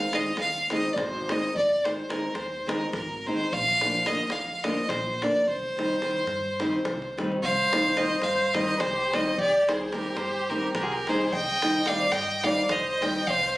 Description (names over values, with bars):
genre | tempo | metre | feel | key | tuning
balkan folk, Balkan wedding band | 215 BPM (eighths) | 7/8 | straight | C minor | A4 = 440 Hz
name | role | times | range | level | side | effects
clear fiddle | melody | 0.0-13.6 s | Ab4 to G5 | -26 LUFS | equal | none
nylon-string guitar | accompaniment | 0.0-13.2 s | D3 to Eb4 | -29 LUFS | equal | none
upright bass | bass | 0.0-13.6 s | Ab1 to G2 | -39 LUFS | equal | none
davul | percussion | 0.1-13.5 s | none | -35 LUFS | left 1 dB | none
dark violin | second line | 7.4-13.6 s | F4 to Eb5 | -29 LUFS | equal | none
room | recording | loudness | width
moderate studio reverb, RT60 0.6 s | recorded on a phone in the room, club reverb | -23 LUFS | side -18 dB against mid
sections
0.0-7.4 A section; 7.4-13.6 A section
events
none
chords
0.0 Ab; 3.5 Bb; 5.5 Cm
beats
0.15 0.43 0.71 1.00 1.28 | 1.56 1.84 2.12 2.40 2.68 2.96 3.24 | 3.52 3.80 4.08 4.36 4.64 4.92 5.20 | 5.48 5.76 6.04 6.32 6.60 6.88 7.16 | 7.44 7.72 8.00 8.28 8.55 8.83 9.11 | 9.39 9.67 9.95 10.22 10.50 10.78 11.06 | 11.34 11.61 11.89 12.17 12.45 12.72 13.00 | 13.28 13.56